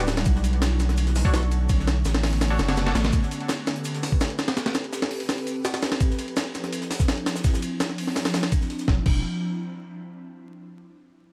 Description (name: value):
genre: drum and bass, jungle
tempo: 167 BPM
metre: 4/4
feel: straight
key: E minor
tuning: A4 = 441 Hz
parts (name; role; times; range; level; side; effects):
- band-passed chord stab; stabs; 0.0-2.9 s; D4 to C#5; -36 LUFS; equal; chorus, vintage 12-bit sampler grit, dub echo
- saturated sub bass; bass; 0.0-3.1, 8.9-9.2 s; D1 to B1; -26 LUFS; equal; none
- breakbeat sampler-style drum kit; drums; 0.1-9.1 s; crash cymbal, hi-hat, kick drum, ride cymbal, snare drum; -27 LUFS; equal; none
- tight funk drum kit; drums; 0.1-8.9 s; hi-hat, shaker, snare drum; -40 LUFS; equal; high-pass filter on hats, high-pass filter on snare, high-pass filter on perc, high-pass filter on room
room: light reverb, small room ambience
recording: vinyl crackle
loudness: -24 LUFS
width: mono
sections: 0.0-8.9 A section; 8.9-10.3 B section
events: none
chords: 0.3 Bm9; 3.1 Am9; 6.0 Dm9; 8.9 Em9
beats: | 0.26 0.62 0.98 1.33 | 1.69 2.05 2.41 2.77 | 3.13 3.49 3.85 4.21 | 4.57 4.93 5.29 5.65 | 6.01 6.37 6.72 7.08 | 7.44 7.80 8.16 8.52 | 8.88